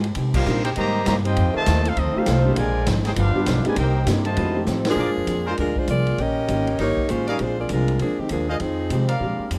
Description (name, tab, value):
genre	jazz, big band swing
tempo	199 BPM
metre	4/4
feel	swing 62% on 8ths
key	Bb mixolydian from 5.0 s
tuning	A4 = 440 Hz
part	picked steel-string acoustic guitar	accompaniment	0.0-9.6 s	F2 to A4	-33 LUFS	equal	none
part	upright bass	bass	0.0-9.6 s	G1 to C3	-26 LUFS	equal	none
part	swinging big-band drum kit	drums	0.0-9.6 s	crash cymbal, hi-hat, kick drum, ride cymbal, snare drum	-32 LUFS	equal	none
part	clear trumpet section	melody	0.3-4.6 s	C4 to Bb5	-29 LUFS	equal	none
part	dark trombone section	second line	0.3-4.6 s	C3 to G4	-29 LUFS	equal	none
part	dark grand piano	accompaniment	0.5-9.6 s	G3 to Ab4	-30 LUFS	equal	none
part	warm saxophone section	melody	4.9-9.1 s	Eb3 to Eb5	-25 LUFS	equal	none
part	clear trumpet section	stabs	5.0-9.5 s	F4 to F5	-31 LUFS	equal	none
room	light reverb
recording	none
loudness	-21 LUFS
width	mono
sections	0.0-5.0 A section; 5.0-9.6 B section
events	band accent 0.3, 4.8; drum fill 4.7-5.0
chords	0.2 Cm7; 1.4 F7; 2.6 Bb7; 3.2 G7; 3.8 Cm7; 4.4 F7; 5.0 Bb7; 6.2 Eb7; 7.4 Bb7; 8.6 Fm7